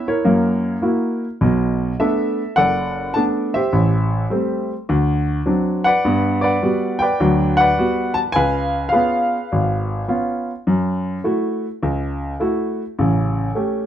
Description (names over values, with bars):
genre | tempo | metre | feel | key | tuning
solo jazz | 104 BPM | 4/4 | swing 69% on 8ths | B minor | A4 = 440 Hz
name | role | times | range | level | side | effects
warm grand piano | solo | 0.0-13.9 s | F#1 to A5 | -17 LUFS | equal | none
room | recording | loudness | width
wet studio ambience, RT60 0.5 s | heard from further back in the room | -17 LUFS | side -10 dB against mid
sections
0.0-1.4 A section; 1.4-13.9 B section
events
none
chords
0.2 F#7; 1.4 Bm7; 3.7 Am7; 4.9 D7; 6.0 Gmaj7; 8.3 C#7; 10.7 F#m7; 13.0 A7